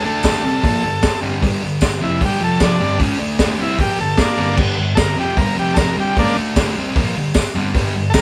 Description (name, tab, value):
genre	garage rock duo or trio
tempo	152 BPM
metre	4/4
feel	straight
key	unclear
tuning	A4 = 441 Hz
part	overdriven combo organ	melody	0.0-8.2 s	Bb3 to Bb4	-23 LUFS	equal	none
part	fuzz guitar	riff	0.0-8.2 s	F2 to D4	-22 LUFS	equal	distortion
part	crunchy breakbeat drum kit	drums	0.2-8.2 s	crash cymbal, hi-hat, kick drum, snare drum	-21 LUFS	equal	none
part	tambourine	percussion	0.2-8.2 s	none	-35 LUFS	equal	none
room	light reverb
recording	band playing live in one room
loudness	-17 LUFS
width	mono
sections	0.0-8.2 A section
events	transistor combo organ solo 0.0-8.2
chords	0.0 D5; 0.4 G5; 2.4 F5; 2.8 G5; 3.2 D5; 3.6 G5; 5.6 F5; 6.0 G5; 6.4 D5; 6.8 G5